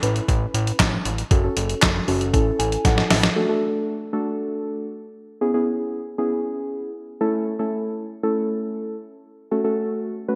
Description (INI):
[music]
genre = synth-pop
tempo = 117 BPM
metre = 4/4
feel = straight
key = unclear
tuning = A4 = 439 Hz
[part]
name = muted felt-like synth keys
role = accompaniment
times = 0.0-10.4 s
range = A3 to G#5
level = -26 LUFS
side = equal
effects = chorus
[part]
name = fat analog bass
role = bass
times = 0.0-3.3 s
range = F#1 to A1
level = -26 LUFS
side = equal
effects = none
[part]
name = clean 12-bit digital drum machine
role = drums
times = 0.0-3.4 s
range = handclaps, hi-hat, kick drum, snare drum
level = -22 LUFS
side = equal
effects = gated reverb
[sound]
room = moderate plate reverb, RT60 2.1 s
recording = bright 1980s-style digital production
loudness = -23 LUFS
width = mono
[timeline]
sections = 0.0-3.4 A section; 3.4-10.4 A section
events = synth keys fill 2.3-3.4; drum fill 2.9-3.4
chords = 0.0 A; 1.3 F#m; 2.3 A; 3.4 D; 5.4 E6; 7.2 A; 9.5 F#m